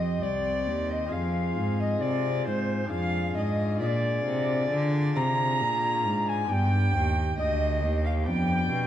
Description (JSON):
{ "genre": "classical, baroque-style sonata movement with continuo", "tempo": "67 BPM", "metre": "4/4", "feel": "straight", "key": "unclear", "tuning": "A4 = 440 Hz", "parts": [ { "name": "alto recorder", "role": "melody", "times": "0.0-8.9 s", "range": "C5 to Bb5", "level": "-30 LUFS", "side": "left 3 dB", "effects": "none" }, { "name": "rich violin", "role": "second line", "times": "0.0-8.9 s", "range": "C5 to Bb5", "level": "-34 LUFS", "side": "right 5 dB", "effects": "none" }, { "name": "chamber organ, sparkling flutes", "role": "accompaniment", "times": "0.0-8.9 s", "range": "C2 to Ab4", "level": "-31 LUFS", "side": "left 1 dB", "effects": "none" }, { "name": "rich cello", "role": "bass", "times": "0.0-8.9 s", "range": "C2 to D3", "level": "-28 LUFS", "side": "right 1 dB", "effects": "none" } ], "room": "wet recital hall reverb, RT60 1.4 s", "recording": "dark, warm production", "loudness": "-24 LUFS", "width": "side -11 dB against mid", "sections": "0.0-8.9 A section", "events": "none", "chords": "0.0 Cm; 1.1 Fm; 2.9 Ddim/F; 6.5 G; 8.3 G7/F" }